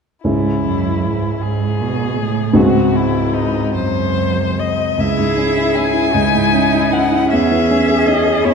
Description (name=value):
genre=classical, slow romantic movement for piano quartet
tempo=45-54 BPM (dotted quarters)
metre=6/8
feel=rubato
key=C# minor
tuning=A4 = 441 Hz
part: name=warm baby grand piano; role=accompaniment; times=0.2-8.5 s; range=C#2 to G#4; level=-16 LUFS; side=equal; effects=none
part: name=warm violin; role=melody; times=0.3-8.5 s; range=D#4 to G#5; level=-19 LUFS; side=left 6 dB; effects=none
part: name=rich cello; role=second line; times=0.3-8.5 s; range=F#2 to G#4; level=-20 LUFS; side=right 4 dB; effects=none
part: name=rich viola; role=accompaniment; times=5.0-8.5 s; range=C#4 to E4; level=-23 LUFS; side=right 3 dB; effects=none
room=wet scoring stage reverb, RT60 2.1 s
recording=dark, warm production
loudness=-13 LUFS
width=side -5 dB against mid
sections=0.3-5.0 A section; 5.0-8.5 B section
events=none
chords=0.3 C#m; 2.6 G#7/C#; 5.0 C#m; 7.3 C#m/E